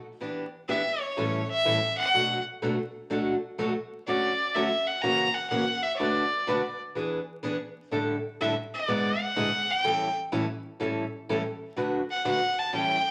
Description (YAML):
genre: country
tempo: 124 BPM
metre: 4/4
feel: swing 68% on 8ths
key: D major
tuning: A4 = 440 Hz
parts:
  - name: picked old ladder-braced acoustic guitar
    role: accompaniment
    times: 0.2-13.0 s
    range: G#2 to B4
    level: -31 LUFS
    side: equal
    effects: none
  - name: clear fiddle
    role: melody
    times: 0.7-13.1 s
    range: C#5 to A#5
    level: -28 LUFS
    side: equal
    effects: none
room: wet large studio reverb, RT60 0.9 s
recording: vinyl crackle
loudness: -28 LUFS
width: mono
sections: 0.0-13.1 A section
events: none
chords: 0.2 Em7; 1.2 A7; 2.1 Bm7; 4.1 Dmaj7; 5.0 F#7/C#; 6.0 Bm7/D; 7.0 E7; 7.9 A7sus4; 8.9 E7/G#; 9.8 A7; 11.8 D6